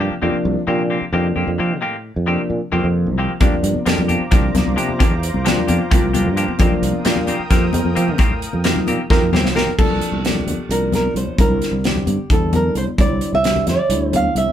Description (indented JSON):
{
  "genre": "electric jazz fusion",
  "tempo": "264 BPM (eighths)",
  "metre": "7/8",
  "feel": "straight",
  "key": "unclear",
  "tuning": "A4 = 440 Hz",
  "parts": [
    { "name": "dark grand piano", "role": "accompaniment", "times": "0.0-14.5 s", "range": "C3 to G4", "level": "-23 LUFS", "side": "left 2 dB", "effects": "none" },
    { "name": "clean electric guitar", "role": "stabs", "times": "0.0-9.7 s", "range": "Eb3 to G4", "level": "-24 LUFS", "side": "left 2 dB", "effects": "none" },
    { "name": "sustaining fretless electric bass", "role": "bass", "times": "0.0-14.5 s", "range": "C2 to F3", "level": "-21 LUFS", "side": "right 1 dB", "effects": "none" },
    { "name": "lush unison pad", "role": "sustained chords", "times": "3.8-9.8 s", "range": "F4 to Eb6", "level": "-29 LUFS", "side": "equal", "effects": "chorus" },
    { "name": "modern studio drum kit", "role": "drums", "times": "3.4-14.5 s", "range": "crash cymbal, hi-hat, kick drum, snare drum", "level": "-18 LUFS", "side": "equal", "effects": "none" },
    { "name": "congas", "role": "percussion", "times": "3.4-14.5 s", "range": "none", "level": "-24 LUFS", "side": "left 4 dB", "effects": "none" },
    { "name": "flamenco guitar", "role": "melody", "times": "9.1-14.5 s", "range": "G4 to F5", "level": "-20 LUFS", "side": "right 2 dB", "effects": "none" }
  ],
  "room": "moderate studio reverb, RT60 0.5 s",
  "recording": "band playing live in one room",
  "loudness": "-15 LUFS",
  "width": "side -10 dB against mid",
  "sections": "0.0-9.8 A section; 9.8-14.5 B section",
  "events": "drum fill 9.1-9.8",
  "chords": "0.2 F9sus4; 3.4 C9sus4; 6.6 F9sus4; 9.8 Gm11/C; 11.4 C9; 13.0 Cadd9"
}